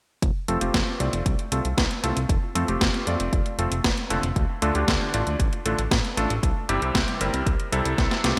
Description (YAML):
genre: italo disco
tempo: 116 BPM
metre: 4/4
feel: straight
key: F major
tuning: A4 = 439 Hz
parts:
  - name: fat analog bass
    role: bass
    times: 0.2-8.4 s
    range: F1 to F2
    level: -30 LUFS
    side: equal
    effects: none
  - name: clean 12-bit digital drum machine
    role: drums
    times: 0.2-8.4 s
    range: hi-hat, snare drum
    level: -29 LUFS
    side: equal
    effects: overdrive, gated reverb
  - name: electronic kick drum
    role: drums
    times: 0.2-8.1 s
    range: none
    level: -28 LUFS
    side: equal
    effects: none
  - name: bright electric grand piano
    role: stabs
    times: 0.5-8.4 s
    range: C3 to D5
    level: -29 LUFS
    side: equal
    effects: low-pass filter
room: moderate lush hall reverb, RT60 2.2 s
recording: bright 1980s-style digital production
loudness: -24 LUFS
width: mono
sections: 0.2-8.4 A section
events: drum fill 8.0-8.4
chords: 0.2 F; 4.4 Dm; 6.4 C